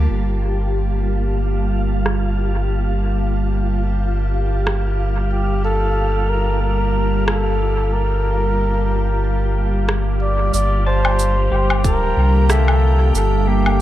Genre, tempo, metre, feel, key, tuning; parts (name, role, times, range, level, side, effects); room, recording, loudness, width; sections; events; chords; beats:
ambient dub; 92 BPM; 4/4; swing 57% on 16ths; G minor; A4 = 439 Hz
soft additive organ-like pad; sustained chords; 0.0-13.8 s; D3 to A5; -24 LUFS; right 1 dB; ensemble chorus, built-in reverb
warm sub bass; bass; 0.0-13.8 s; D1 to C2; -18 LUFS; equal
wind-like tuned noise texture; texture; 0.0-13.8 s; F3 to F5; -30 LUFS; equal; built-in reverb
electronic rim click, shaker and woodblock; drums; 2.1-13.8 s; -25 LUFS; equal; low-pass filter on perc, low-pass filter on snare, dub echo
trumpet with bucket mute; melody; 5.3-13.8 s; G4 to D5; -22 LUFS; equal; dub echo
pedal steel guitar; arpeggios; 10.9-13.8 s; Bb3 to A5; -26 LUFS; left 2 dB; tape echo
electronic kick drum; drums; 11.8-12.0 s; -19 LUFS; equal
light reverb; -16 LUFS; side -13 dB against mid
0.1-10.5 A section; 10.5-13.8 B section
filter sweep on drum 0.1-10.5
0.1 Gm9
| 0.10 0.76 1.41 2.06 | 2.71 3.37 4.02 4.67 | 5.32 5.97 6.62 7.28 | 7.93 8.58 9.23 9.89 | 10.54 11.19 11.84 12.49 | 13.15 13.80